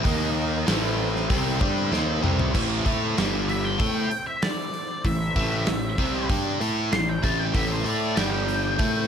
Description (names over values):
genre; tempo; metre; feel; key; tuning
blues rock power trio and southern rock; 96 BPM; 4/4; straight; A minor; A4 = 440 Hz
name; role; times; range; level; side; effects
overdriven tonewheel organ; sustained chords; 0.0-9.1 s; G3 to D#5; -37 LUFS; right 3 dB; none
biting overdriven guitar; riff; 0.0-9.1 s; G2 to A4; -25 LUFS; equal; none
fuzz picked electric bass; bass; 0.0-9.1 s; G1 to A2; -28 LUFS; equal; overdrive
big rock drum kit; drums; 0.1-8.9 s; crash cymbal, hi-hat, kick drum, snare drum, toms; -27 LUFS; equal; none
octave-fuzz lead guitar; melody; 3.5-9.1 s; C5 to C6; -29 LUFS; left 1 dB; wah, distortion
room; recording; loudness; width
light reverb, small room ambience; none; -22 LUFS; side -8 dB against mid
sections
0.0-2.5 A section; 2.5-9.1 B section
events
drum fill 1.9-2.5; lead electric guitar solo 2.5-9.1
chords
0.1 D#5; 0.7 Am; 3.2 G5; 3.8 Am; 8.2 G5